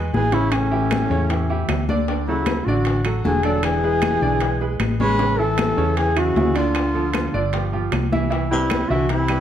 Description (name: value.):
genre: Afro-Cuban jazz.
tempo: 154 BPM.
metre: 4/4.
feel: straight.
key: unclear.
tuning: A4 = 436 Hz.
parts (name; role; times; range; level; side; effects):
clear baby grand piano; accompaniment; 0.0-9.4 s; C#3 to E5; -25 LUFS; right 4 dB; none.
hollow-body short-scale fingered electric bass; bass; 0.0-9.4 s; E1 to E2; -23 LUFS; equal; none.
warm duduk; melody; 0.1-9.4 s; C#4 to B4; -22 LUFS; left 1 dB; none.
bongos; percussion; 0.1-9.3 s; none; -34 LUFS; left 7 dB; none.
congas; percussion; 0.1-9.4 s; none; -28 LUFS; left 3 dB; none.
breathy baritone saxophone; second line; 0.2-9.4 s; A2 to G#3; -26 LUFS; left 3 dB; none.
timbales; percussion; 0.3-9.4 s; none; -31 LUFS; right 5 dB; none.
claves; percussion; 0.5-9.4 s; none; -36 LUFS; right 4 dB; none.
room: moderate large studio reverb, RT60 0.9 s.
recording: none.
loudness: -18 LUFS.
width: side -10 dB against mid.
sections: 0.0-9.4 A section.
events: none.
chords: 0.0 E; 0.5 A7; 2.1 D; 3.6 E7; 5.2 Amaj7; 6.8 Dm; 7.5 Cadd11/G; 8.3 Cmaj7.